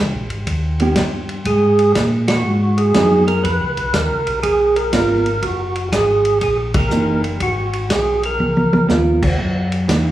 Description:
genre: soul jazz organ trio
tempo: 121 BPM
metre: 4/4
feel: swing 66% on 8ths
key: F# mixolydian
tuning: A4 = 436 Hz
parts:
  - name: mellow tonewheel organ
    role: bass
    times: 0.0-10.1 s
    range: F#1 to A#2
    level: -20 LUFS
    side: equal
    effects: slow rotary speaker
  - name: warm soul drum kit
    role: drums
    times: 0.3-10.0 s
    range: crash cymbal, hi-hat, kick drum, ride cymbal, snare drum, toms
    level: -21 LUFS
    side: equal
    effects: none
  - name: vintage hollow-body jazz guitar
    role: accompaniment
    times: 0.8-10.1 s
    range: D#3 to A#4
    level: -19 LUFS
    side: right 2 dB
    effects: none
  - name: percussive tonewheel organ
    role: melody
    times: 1.5-8.9 s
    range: F#4 to B4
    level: -17 LUFS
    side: right 2 dB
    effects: slow rotary speaker, overdrive
room: wet recital hall reverb, RT60 1.4 s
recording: recorded in a church or concert hall, small room ambience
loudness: -14 LUFS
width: side -13 dB against mid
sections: 0.0-9.4 A section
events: band accent 2.2, 6.7; drum fill 8.4-8.9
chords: 0.5 D#aug7; 1.5 G#m7; 3.4 C#13; 5.4 F#13; 7.4 G#m7; 8.4 C#13; 9.4 F#6

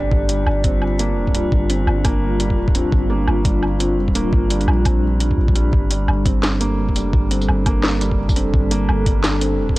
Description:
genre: half-time drum and bass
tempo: 171 BPM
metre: 4/4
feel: swing 59% on 16ths, half-time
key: G minor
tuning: A4 = 440 Hz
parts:
  - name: dark analog pad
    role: sustained chords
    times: 0.1-9.8 s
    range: G3 to A4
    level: -23 LUFS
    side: equal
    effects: chorus, vintage 12-bit sampler grit, sidechain pumping
  - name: felt-muted upright piano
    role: arpeggios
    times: 0.0-9.8 s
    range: G3 to G4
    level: -24 LUFS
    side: right 2 dB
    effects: tape echo
  - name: long sustained 808-style bass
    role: bass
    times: 0.0-9.8 s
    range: G1 to Bb1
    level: -20 LUFS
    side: equal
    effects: tube saturation
  - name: metallic inharmonic drone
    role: texture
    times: 0.0-9.8 s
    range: D4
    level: -32 LUFS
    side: left 2 dB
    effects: chorus, built-in reverb
  - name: electronic kick drum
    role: drums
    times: 0.1-9.8 s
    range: none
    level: -18 LUFS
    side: equal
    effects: overdrive
  - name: drum and bass drum kit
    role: drums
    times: 0.3-9.8 s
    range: hi-hat, snare drum, tambourine, woodblock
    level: -23 LUFS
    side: equal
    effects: none
room: little or no reverb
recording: dry, gritty hardware recording, cassette tape, faint mains hum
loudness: -15 LUFS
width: side -18 dB against mid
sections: 0.0-9.8 A section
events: none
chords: 0.0 Gm

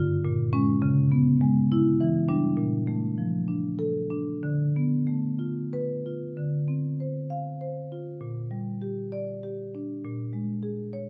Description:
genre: classical, contemporary piece for solo marimba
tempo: 92-103 BPM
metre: 3/4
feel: rubato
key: D minor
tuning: A4 = 440 Hz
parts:
  - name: marimba with medium mallets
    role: solo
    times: 0.0-11.1 s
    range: G2 to F5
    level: -27 LUFS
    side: equal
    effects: none
room: moderate stone room reverb, RT60 1.0 s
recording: none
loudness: -27 LUFS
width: mono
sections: 0.0-6.4 A section; 6.4-11.1 B section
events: none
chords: 0.2 Bbm7; 0.8 C#m7; 2.0 Em7; 2.6 Bbmaj7; 4.4 Dm6; 6.4 Dm7; 8.2 Bb6; 10.1 Bbm7

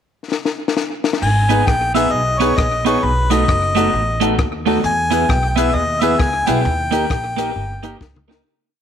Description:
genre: ska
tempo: 133 BPM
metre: 4/4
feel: swing 61% on 8ths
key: G# harmonic minor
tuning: A4 = 440 Hz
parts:
  - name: compact cocktail drum kit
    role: drums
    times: 0.3-8.4 s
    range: crash cymbal, hi-hat, kick drum, rim click, snare drum, toms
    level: -21 LUFS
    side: left 3 dB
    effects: slapback echo
  - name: clear harmonica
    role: melody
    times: 1.2-8.0 s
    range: B4 to G#5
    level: -19 LUFS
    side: left 2 dB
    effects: none
  - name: upright bass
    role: bass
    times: 1.2-8.4 s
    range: F#1 to E2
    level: -21 LUFS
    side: equal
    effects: none
  - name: clean electric guitar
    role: accompaniment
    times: 1.5-8.4 s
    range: A3 to G#4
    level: -21 LUFS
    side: right 10 dB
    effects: wide subtle chorus, slapback echo
  - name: clear upright piano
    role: stabs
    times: 1.5-8.4 s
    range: A#3 to B4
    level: -22 LUFS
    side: left 8 dB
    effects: slapback echo
room: moderate plate reverb, RT60 2.1 s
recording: 1960s-style stereo with parts hard left and right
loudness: -15 LUFS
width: side -8 dB against mid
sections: 0.0-1.2 pickup bar; 1.2-8.5 head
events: drum fill 0.3-1.2, 8.0-8.5; fade-out 6.7-8.5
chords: 0.0 N.C.; 1.2 G#m; 3.0 B7; 4.8 E; 6.7 D#

